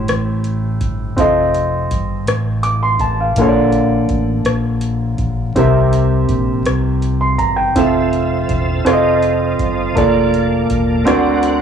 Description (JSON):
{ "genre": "slow gospel", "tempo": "55 BPM (dotted quarters)", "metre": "6/8", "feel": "straight", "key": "F major", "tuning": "A4 = 436 Hz", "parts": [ { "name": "warm baby grand piano", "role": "accompaniment", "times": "0.0-11.6 s", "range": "A2 to D6", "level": "-15 LUFS", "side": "equal", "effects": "cassette tape" }, { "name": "modern bright fingered electric bass", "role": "bass", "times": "0.0-11.6 s", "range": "E1 to D2", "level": "-20 LUFS", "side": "left 1 dB", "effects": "transformer saturation" }, { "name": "booming analog drum machine", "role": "drums", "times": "0.1-11.6 s", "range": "hi-hat, kick drum, rim click", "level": "-22 LUFS", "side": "equal", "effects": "cassette tape" }, { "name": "tonewheel organ", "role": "sustained chords", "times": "7.8-11.6 s", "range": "Bb3 to F#5", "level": "-19 LUFS", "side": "right 7 dB", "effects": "fast rotary speaker, chorus vibrato, cassette tape" } ], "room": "light reverb", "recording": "home recording on cassette", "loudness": "-13 LUFS", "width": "side -7 dB against mid", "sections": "0.0-11.6 A section", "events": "tonewheel organ fill 11.1-11.6", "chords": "0.0 Am7; 1.2 F7; 3.4 Bbmaj7; 5.6 C7; 7.8 Fmaj7; 8.9 F7; 10.0 Bbmaj7/F; 11.1 D7b13" }